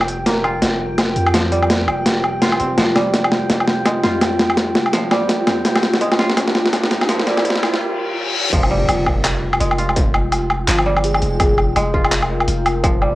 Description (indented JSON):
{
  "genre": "half-time drum and bass",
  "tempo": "167 BPM",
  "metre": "4/4",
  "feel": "swing 59% on 16ths, half-time",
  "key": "F minor",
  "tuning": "A4 = 439 Hz",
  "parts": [
    { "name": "deep dark ambient pad", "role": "sustained chords", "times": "0.0-13.2 s", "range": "F4 to G5", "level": "-25 LUFS", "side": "left 1 dB", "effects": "chorus, built-in reverb, vintage 12-bit sampler grit, sidechain pumping, cassette tape" },
    { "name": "koto", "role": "arpeggios", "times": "0.0-13.2 s", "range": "F3 to F4", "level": "-24 LUFS", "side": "right 1 dB", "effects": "vintage 12-bit sampler grit, cassette tape, analog delay" },
    { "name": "long sustained 808-style bass", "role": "bass", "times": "0.0-13.2 s", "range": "F1 to F2", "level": "-24 LUFS", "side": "equal", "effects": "none" },
    { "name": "boom bap sampler-style drum kit", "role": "drums", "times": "0.0-13.1 s", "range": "crash cymbal, handclaps, hi-hat, snare drum, woodblock", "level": "-17 LUFS", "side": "equal", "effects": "overdrive, cassette tape" },
    { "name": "metallic inharmonic drone", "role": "texture", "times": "0.0-7.8 s", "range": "G5", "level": "-27 LUFS", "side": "right 1 dB", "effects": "chorus, built-in reverb, cassette tape" },
    { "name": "electronic kick drum", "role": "drums", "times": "0.3-12.9 s", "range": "none", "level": "-23 LUFS", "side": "equal", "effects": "distortion, high-pass filter on kick, cassette tape, high-pass filter on room" },
    { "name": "riser, reverse cymbal and impact", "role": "sound effects", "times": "5.1-10.0 s", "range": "none", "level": "-25 LUFS", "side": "left 1 dB", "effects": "none" },
    { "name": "airy dreamy lead", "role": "melody", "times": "11.0-11.6 s", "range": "Ab4", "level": "-23 LUFS", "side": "equal", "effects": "chorus, cassette tape, analog delay" }
  ],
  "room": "wet studio reverb, RT60 0.6 s",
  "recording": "home recording on cassette, high-pass filter",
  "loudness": "-14 LUFS",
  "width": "side -17 dB against mid",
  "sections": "0.0-8.5 A section; 8.5-13.2 B section",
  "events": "build-up 0.0-8.5; drum fill 0.0-7.8; filter sweep 0.0-8.5; riser 5.1-7.8; break 7.8-8.5; reverse cymbal 7.8-8.5; drop 8.5-13.2; impact 8.5-10.0",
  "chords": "0.0 Fmadd9",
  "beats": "0.26 0.62 0.98 | 1.34 1.70 2.06 2.42 | 2.78 3.14 3.50 3.85 | 4.21 4.57 4.93 5.29 | 5.65 6.01 6.37 6.73 | 7.09 7.45 7.81 8.17 | 8.53 8.88 9.24 9.60 | 9.96 10.32 10.68 11.04 | 11.40 11.76 12.12 12.48 | 12.84"
}